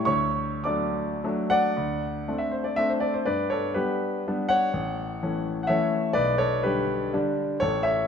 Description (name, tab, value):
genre	classical, romantic triple-time dance for piano with dotted rhythms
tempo	97-131 BPM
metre	3/4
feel	rubato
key	D major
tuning	A4 = 441 Hz
part	warm grand piano	solo	0.0-8.1 s	A1 to D6	-23 LUFS	left 1 dB	none
room	moderate recital hall reverb, RT60 1.8 s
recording	minimal, uncompressed stereo recording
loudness	-23 LUFS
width	side -7 dB against mid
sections	0.0-1.8 A section; 1.8-8.1 B section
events	none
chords	0.1 D; 1.8 D7; 3.3 G; 4.7 A; 6.2 G/B